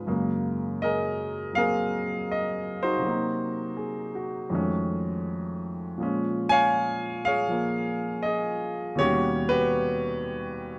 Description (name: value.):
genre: solo jazz.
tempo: 81 BPM.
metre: 4/4.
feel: swing 67% on 8ths.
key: unclear.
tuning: A4 = 443 Hz.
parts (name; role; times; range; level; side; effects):
warm grand piano; solo; 0.0-10.8 s; Eb2 to Ab5; -27 LUFS; equal; none.
room: light reverb.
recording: none.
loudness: -27 LUFS.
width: mono.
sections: 0.0-10.8 A section.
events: none.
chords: 0.1 Gbmaj9; 3.0 Cm7b5; 4.5 F7alt; 6.0 Bbm7; 9.0 Eb7alt.